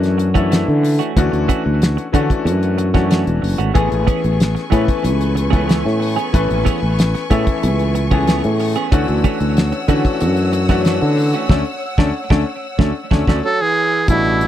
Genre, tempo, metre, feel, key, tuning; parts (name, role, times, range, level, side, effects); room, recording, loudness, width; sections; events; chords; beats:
electric jazz fusion; 93 BPM; 4/4; straight; A4 = 440 Hz
clear concert grand piano; accompaniment; 0.0-14.5 s; E3 to B4; -21 LUFS; left 5 dB
sustaining fretless electric bass; bass; 0.0-14.5 s; E1 to D3; -17 LUFS; equal; lush chorus
damped 70s drum kit; drums; 0.0-14.5 s; hi-hat, kick drum, snare drum; -16 LUFS; equal
clean electric guitar; stabs; 0.2-13.4 s; E3 to G#4; -25 LUFS; right 12 dB; analog chorus, tape echo
warm studio string section; sustained chords; 3.7-14.0 s; B4 to E6; -27 LUFS; left 2 dB
clear tenor saxophone; second line; 13.4-14.5 s; B2 to F#3; -22 LUFS; right 9 dB
trumpet with metal mute; melody; 13.5-14.5 s; E4 to A4; -15 LUFS; equal
little or no reverb; dry, close 1970s-style studio recording; -14 LUFS; side -11 dB against mid
0.0-14.1 A section
drum fill 11.5-14.1; band accent 11.5-14.1; grand piano fill 12.8-14.1
0.0 Dmaj9; 3.8 Amaj9; 8.9 Dmaj9
0.51 | 1.16 1.81 2.46 3.11 | 3.75 4.40 5.05 5.70 | 6.34 6.99 7.63 8.28 | 8.92 9.57 10.21 10.86 | 11.50 12.15 12.79 13.44 | 14.09